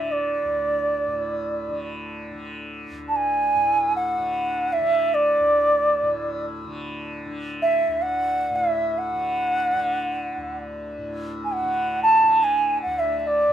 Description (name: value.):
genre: indian classical, Hindustani.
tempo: free time.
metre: none.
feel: none.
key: D raga yaman.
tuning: A4 = 441 Hz.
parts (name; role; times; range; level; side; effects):
bansuri; melody; 0.0-13.5 s; D5 to A5; -20 LUFS; right 1 dB; none.
tanpura; drone; 0.0-13.5 s; D2 to D3; -32 LUFS; left 1 dB; none.
room: moderate small room ambience, RT60 0.5 s.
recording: band playing live in one room.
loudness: -20 LUFS.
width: side -10 dB against mid.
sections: 0.0-13.5 A section.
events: none.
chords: none.